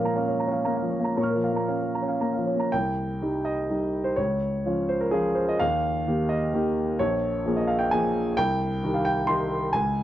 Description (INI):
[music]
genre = neoclassical minimalist piano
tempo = 113-134 BPM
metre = 3/4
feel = rubato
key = unclear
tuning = A4 = 438 Hz
[part]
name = warm grand piano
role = solo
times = 0.0-10.0 s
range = Bb1 to F6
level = -23 LUFS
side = equal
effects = none
[sound]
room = little or no reverb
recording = dry, close 1970s-style studio recording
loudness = -23 LUFS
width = side -12 dB against mid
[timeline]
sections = 0.0-2.7 A section; 2.7-10.0 B section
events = none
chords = 0.0 Bbm; 2.7 Cm; 4.2 Db; 5.6 Eb; 7.0 Bbm7; 8.4 Cm